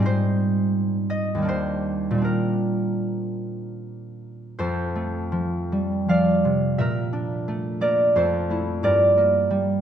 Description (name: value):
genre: classical, solo harp piece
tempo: 74-91 BPM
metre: 3/4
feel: rubato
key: Bb mixolydian, F major from 4.6 s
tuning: A4 = 440 Hz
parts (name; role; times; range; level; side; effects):
- concert harp; solo; 0.0-9.8 s; Eb2 to F5; -20 LUFS; right 1 dB; none
room: moderate concert hall reverb, RT60 2.0 s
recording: none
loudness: -20 LUFS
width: side -9 dB against mid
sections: 0.0-4.6 A section; 4.6-9.8 B section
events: none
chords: 0.1 Abmaj7; 1.5 Ebmaj7; 2.3 Bb69; 4.6 F6; 6.8 Bbmaj7#11; 8.1 Fmaj7; 8.8 Gm9